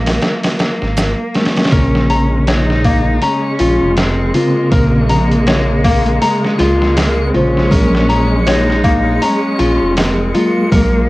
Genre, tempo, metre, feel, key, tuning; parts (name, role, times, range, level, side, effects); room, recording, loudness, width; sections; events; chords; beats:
trip hop; 80 BPM; 4/4; swing 58% on 16ths; Bb minor; A4 = 440 Hz
rich cello; melody; 0.0-11.1 s; Bb3 to Eb4; -20 LUFS; equal; vintage 12-bit sampler grit, cassette tape, tape echo
reed electric piano; accompaniment; 0.0-11.1 s; Db3 to C5; -18 LUFS; equal; fast tremolo, vintage 12-bit sampler grit
warm studio string section; sustained chords; 0.0-11.1 s; Ab3 to Bb3; -22 LUFS; equal
dark detuned saw bass; bass; 0.0-11.1 s; F1 to Db2; -16 LUFS; equal
trip hop sampler-style drum kit; drums; 0.1-10.9 s; hi-hat, kick drum, snare drum; -17 LUFS; equal; overdrive, cassette tape
maracas; percussion; 1.0-1.1 s; -29 LUFS; right 5 dB
nylon-string guitar; arpeggios; 1.7-11.1 s; Bb3 to Bb5; -17 LUFS; left 2 dB; vintage 12-bit sampler grit, tape echo
backwards swelling texture; texture; 3.0-11.1 s; Db7; -31 LUFS; right 3 dB; built-in reverb
light reverb; home recording on cassette; -11 LUFS; side -19 dB against mid
0.0-1.7 A section; 1.7-11.1 B section
0.0 Gbadd9; 1.7 Bbmadd9; 7.7 Gbadd9
0.22 0.97 | 1.72 2.47 3.22 3.97 | 4.72 5.47 6.22 6.97 | 7.72 8.47 9.22 9.97 | 10.72